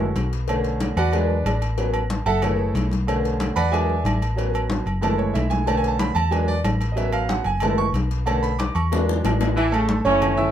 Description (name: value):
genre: latin, salsa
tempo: 185 BPM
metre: 4/4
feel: straight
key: A major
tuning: A4 = 440 Hz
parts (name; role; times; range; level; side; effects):
- bright concert grand piano; accompaniment; 0.0-10.5 s; D3 to E6; -24 LUFS; right 4 dB; none
- hollow-body short-scale fingered electric bass; bass; 0.0-10.5 s; F#1 to E2; -24 LUFS; left 1 dB; none
- congas; percussion; 0.0-10.5 s; none; -29 LUFS; left 2 dB; none
- agogo bells and timbales; percussion; 0.2-10.4 s; none; -31 LUFS; right 2 dB; none
- cowbell and bongos; percussion; 0.2-9.6 s; none; -28 LUFS; left 6 dB; none
- bright trombone section; second line; 9.6-10.4 s; C#3 to E3; -27 LUFS; left 3 dB; none
- bright trombone section; melody; 10.1-10.5 s; E3 to C#4; -19 LUFS; right 1 dB; none
room: moderate studio reverb, RT60 0.5 s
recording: minimal, uncompressed stereo recording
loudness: -19 LUFS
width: side -10 dB against mid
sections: 0.0-9.6 A section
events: grand piano solo 0.0-9.6; drum fill 8.9-9.6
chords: 0.5 Bm7; 1.1 E7; 1.8 A6; 2.4 F#m7; 3.1 Bm7; 3.7 E7; 4.4 A6; 5.0 F#m7; 5.7 Bm7; 6.3 E7; 7.0 A6; 7.6 F#m7; 8.3 Bm7; 8.9 E7; 9.6 A6